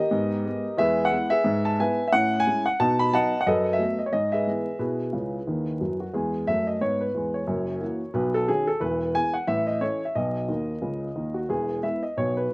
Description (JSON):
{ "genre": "jazz, stride piano", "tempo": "179 BPM", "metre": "4/4", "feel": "swing 58% on 8ths", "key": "E major", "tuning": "A4 = 440 Hz", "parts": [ { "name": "dark grand piano", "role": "solo", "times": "0.0-12.5 s", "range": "E1 to B5", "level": "-22 LUFS", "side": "equal", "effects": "slapback echo" } ], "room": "little or no reverb", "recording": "recorded outdoors, with no room sound, vinyl crackle", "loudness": "-22 LUFS", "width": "side -27 dB against mid", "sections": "0.0-6.1 A section; 6.1-12.5 B section", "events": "grand piano fill 5.1-6.1, 10.5-11.5", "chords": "0.1 G#m; 0.8 E; 1.5 E/G#; 2.1 Amaj7; 2.8 B; 3.5 B5/F#; 4.1 E/G#; 4.8 E/B; 5.5 B; 6.1 E; 7.5 F#7; 8.1 Badd9; 8.8 E; 9.5 A; 10.2 B; 11.5 E", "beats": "0.12 0.45 | 0.79 1.12 1.46 1.79 | 2.12 2.46 2.79 3.13 | 3.46 3.79 4.13 4.46 | 4.80 5.13 5.47 5.80 | 6.14 6.47 6.80 7.14 | 7.47 7.81 8.14 8.48 | 8.81 9.15 9.48 9.82 | 10.15 10.49 10.82 11.16 | 11.49 11.83 12.16 12.50" }